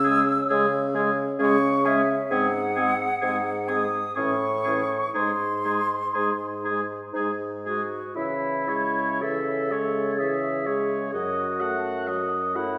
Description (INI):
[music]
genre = classical, slow romantic movement for wind quintet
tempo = 61 BPM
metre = 3/4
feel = uneven beats, rubato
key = C# minor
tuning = A4 = 439 Hz
[part]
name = mellow hollow silver concert flute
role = melody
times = 0.0-12.8 s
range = C#5 to E6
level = -31 LUFS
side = equal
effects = none
[part]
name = warm oboe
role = second line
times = 0.0-12.8 s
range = G#4 to F#5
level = -30 LUFS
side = equal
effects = none
[part]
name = mellow bassoon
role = bass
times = 0.0-12.8 s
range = F#2 to C#3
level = -30 LUFS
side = equal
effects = none
[part]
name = mellow clarinet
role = accompaniment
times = 0.1-12.8 s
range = B#3 to A4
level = -33 LUFS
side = equal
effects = none
[part]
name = warm French horn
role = accompaniment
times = 0.1-12.8 s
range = E3 to A3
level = -35 LUFS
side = equal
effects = none
[sound]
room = wet recital hall reverb, RT60 1.5 s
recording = none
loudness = -25 LUFS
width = mono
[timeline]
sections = 0.0-8.2 A section; 8.2-12.8 B section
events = none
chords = 0.0 C#m; 2.3 G#7; 4.2 Amaj7; 5.2 G#; 8.2 C#m; 11.1 D#dim/F#